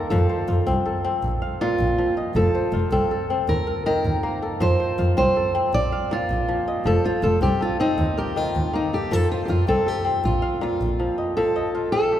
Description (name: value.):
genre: west african traditional, West African string and xylophone music.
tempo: 106 BPM (dotted quarters).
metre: 12/8.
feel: straight.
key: F mixolydian.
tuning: A4 = 441 Hz.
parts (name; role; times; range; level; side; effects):
fingerpicked steel-string acoustic guitar; melody; 0.0-12.2 s; Eb4 to D5; -24 LUFS; right 1 dB; none.
kora; arpeggios; 0.0-12.2 s; Bb2 to F5; -25 LUFS; left 2 dB; none.
clear double bass; bass; 0.1-10.9 s; F1 to F2; -24 LUFS; equal; none.
room: wet cathedral reverb, RT60 6.7 s.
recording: recorded in a church or concert hall.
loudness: -20 LUFS.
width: side -11 dB against mid.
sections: 0.0-11.4 A section.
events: none.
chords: 0.1 F; 1.2 Bb5; 2.4 F; 3.5 Eb5; 4.6 F; 5.7 Bb; 6.9 F; 8.0 Eb5; 9.1 F; 10.2 Bb5; 11.4 F.